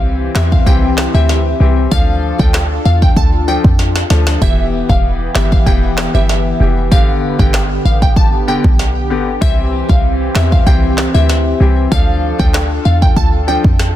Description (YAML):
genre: dancehall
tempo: 96 BPM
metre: 4/4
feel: straight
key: D dorian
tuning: A4 = 440 Hz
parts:
  - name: clear baby grand piano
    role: accompaniment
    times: 0.0-13.7 s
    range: D3 to A4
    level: -20 LUFS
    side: left 6 dB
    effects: sidechain pumping
  - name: lush unison pad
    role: sustained chords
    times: 0.0-14.0 s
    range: D3 to A4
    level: -21 LUFS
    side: equal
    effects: chorus, phaser, sidechain pumping
  - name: short 808-style bass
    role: bass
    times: 0.0-14.0 s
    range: E1 to F2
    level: -14 LUFS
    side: equal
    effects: none
  - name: glassy wavetable pluck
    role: melody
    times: 0.4-13.6 s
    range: E5 to A5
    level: -21 LUFS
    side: equal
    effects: chorus, digital delay
  - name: afro-pop drum kit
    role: drums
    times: 0.4-13.9 s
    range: handclaps, kick drum, rim click, snare drum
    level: -13 LUFS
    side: equal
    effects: soft clipping on snare
room: digital ambience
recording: dense, heavily limited modern master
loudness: -10 LUFS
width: side -12 dB against mid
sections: 0.0-14.0 A section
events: break 0.0-4.4; drum fill 3.8-4.4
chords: 0.0 C; 1.9 Dm; 4.4 Em; 6.9 G; 9.4 C; 11.9 Dm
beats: 0.04 0.67 1.29 | 1.92 2.54 3.17 3.79 | 4.42 5.04 5.67 6.29 | 6.92 7.54 8.17 8.79 | 9.42 10.04 10.67 11.29 | 11.92 12.54 13.17 13.79